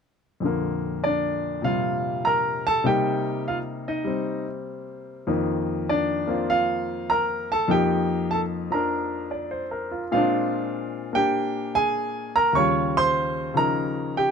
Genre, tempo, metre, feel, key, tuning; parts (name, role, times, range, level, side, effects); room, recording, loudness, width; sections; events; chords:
solo jazz; 99 BPM; 4/4; swing 68% on 8ths; A4 = 441 Hz
clear grand piano; solo; 0.4-14.3 s; Eb2 to Db6; -22 LUFS; equal
little or no reverb; close, detailed microphones; -22 LUFS; side -6 dB against mid
0.4-10.1 A section; 10.1-14.3 B section
0.4 Bbmaj9/F; 2.9 Cm7; 5.3 F7sus4; 10.1 Bb9; 12.5 Eb9